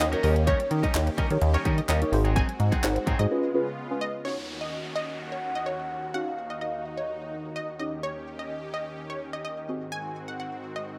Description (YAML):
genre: dance-pop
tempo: 127 BPM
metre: 4/4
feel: straight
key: Eb dorian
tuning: A4 = 440 Hz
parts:
  - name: unison pluck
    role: melody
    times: 0.0-11.0 s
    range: Db5 to Ab5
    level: -36 LUFS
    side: equal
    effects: sidechain pumping, delay
  - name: deep mellow chord stab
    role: accompaniment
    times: 0.0-11.0 s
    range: C4 to Db5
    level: -32 LUFS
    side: equal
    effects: chorus, phaser, sidechain pumping
  - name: supersaw pad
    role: sustained chords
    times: 0.0-11.0 s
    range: Eb2 to G4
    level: -40 LUFS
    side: equal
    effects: sidechain pumping
  - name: electric guitar at the edge of break-up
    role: riff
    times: 0.0-3.2 s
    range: Gb3 to Bb4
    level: -36 LUFS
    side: equal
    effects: lush chorus
  - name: chorused synth bass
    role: bass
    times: 0.0-3.3 s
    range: Ab1 to Eb3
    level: -26 LUFS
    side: equal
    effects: sidechain pumping
  - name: house drum kit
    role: drums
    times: 0.0-3.3 s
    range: handclaps, hi-hat, kick drum, snare drum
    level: -30 LUFS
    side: equal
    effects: none
  - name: group handclap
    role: percussion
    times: 0.0-3.0 s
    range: none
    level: barely audible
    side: none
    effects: none
  - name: downlifter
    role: sound effects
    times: 4.3-8.0 s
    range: none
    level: -45 LUFS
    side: equal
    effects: none
  - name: mellow horn-like synth lead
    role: melody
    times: 5.2-7.8 s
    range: Eb5 to Gb5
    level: -37 LUFS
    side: equal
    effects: chorus, delay
room: little or no reverb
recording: rough home demo mix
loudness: -28 LUFS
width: mono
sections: 0.0-4.3 A section; 4.3-11.0 B section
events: drop 0.0-4.3; drums muted 3.3-4.3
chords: 0.2 Eb7; 2.1 Ab7; 3.3 Db7; 4.3 Ebm7; 7.8 Eb7; 9.7 Ab7